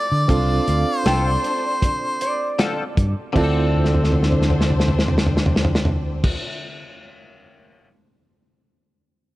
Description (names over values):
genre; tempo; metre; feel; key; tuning
straight-eighth soul blues; 78 BPM; 4/4; straight; D minor; A4 = 440 Hz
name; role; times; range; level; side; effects
bright harmonica; melody; 0.0-2.6 s; D5; -23 LUFS; equal; overdrive
clean lap steel guitar; second line; 0.0-6.3 s; D5 to G5; -29 LUFS; right 2 dB; none
barky reed electric piano; accompaniment; 0.0-6.4 s; C4 to A4; -27 LUFS; right 4 dB; overdrive, tremolo
fingered electric bass; bass; 0.1-6.3 s; C2 to D3; -20 LUFS; equal; none
warm studio string section; sustained chords; 0.3-6.3 s; D4 to C5; -30 LUFS; left 2 dB; none
warm soul drum kit; drums; 0.3-7.9 s; crash cymbal, hi-hat, kick drum, snare drum, toms; -21 LUFS; equal; none
direct-recorded clean electric guitar; stabs; 1.1-6.9 s; D3 to A4; -29 LUFS; left 4 dB; analog chorus
room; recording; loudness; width
light reverb, studio reverb; none; -17 LUFS; side -17 dB against mid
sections
0.0-3.4 A section; 3.4-6.4 B section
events
drum fill 3.7-6.2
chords
0.0 Dm7